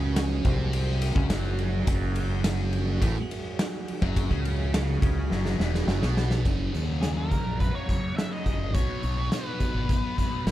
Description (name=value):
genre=psychedelic rock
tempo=105 BPM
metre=4/4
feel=straight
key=unclear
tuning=A4 = 440 Hz
part: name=combo organ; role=sustained chords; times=0.0-6.4 s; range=F#3 to G#4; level=-38 LUFS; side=right 5 dB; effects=none
part: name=thick fuzz guitar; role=riff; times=0.0-10.5 s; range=E2 to C#4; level=-31 LUFS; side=equal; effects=distortion, phaser
part: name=growling fingered electric bass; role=bass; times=0.0-10.5 s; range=E1 to D#2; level=-28 LUFS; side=equal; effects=overdrive
part: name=raw garage drum kit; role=drums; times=0.2-10.5 s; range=crash cymbal, hi-hat, kick drum, ride cymbal, snare drum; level=-28 LUFS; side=equal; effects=none
part: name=congas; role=percussion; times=0.2-6.4 s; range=none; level=-41 LUFS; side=left 3 dB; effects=none
part: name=octave-fuzz lead guitar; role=melody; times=7.0-10.5 s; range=G#4 to E5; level=-34 LUFS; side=left 1 dB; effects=distortion, tape echo
room=studio reverb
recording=none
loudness=-24 LUFS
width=side -14 dB against mid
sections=0.0-6.5 A section; 6.5-10.5 B section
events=drum fill 5.3-6.5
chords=0.0 F#5; 8.7 B5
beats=0.17 0.74 1.31 | 1.88 2.45 3.02 3.59 | 4.16 4.73 5.31 5.88 | 6.45 7.02 7.59 8.17 | 8.74 9.31 9.89 10.46